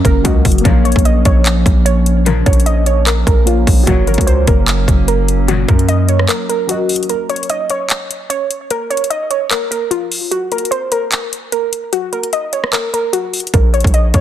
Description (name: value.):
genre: hip hop, trap.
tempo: 149 BPM.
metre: 4/4.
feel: half-time.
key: Bb minor.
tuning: A4 = 440 Hz.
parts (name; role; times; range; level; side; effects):
warbly dusty pluck; melody; 0.0-14.2 s; F4 to Eb5; -18 LUFS; right 1 dB; chorus, low-pass filter, digital delay.
dark grand piano; accompaniment; 0.0-7.1 s; Gb3 to F5; -23 LUFS; left 1 dB; low-pass filter.
warbly tape-like pad; sustained chords; 0.0-7.1 s; F3 to Db4; -21 LUFS; equal; chorus, built-in reverb.
hard-hitting 808-style bass; bass; 0.0-6.3, 13.5-14.2 s; Gb1 to Gb2; -14 LUFS; equal; none.
trap drum kit; drums; 0.0-14.2 s; handclaps, hi-hat, kick drum, rim click; -14 LUFS; equal; none.
dark chamber string section; stabs; 0.7-5.7 s; Bb2 to Gb3; -20 LUFS; left 5 dB; none.
room: little or no reverb.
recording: dense, heavily limited modern master.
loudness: -12 LUFS.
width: side -11 dB against mid.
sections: 0.0-7.1 A section; 7.1-14.2 B section.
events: break 6.3-7.1, 7.1-13.5.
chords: 0.0 Gb; 0.7 Bbm; 3.9 Gb; 7.1 N.C.; 13.5 Bbm.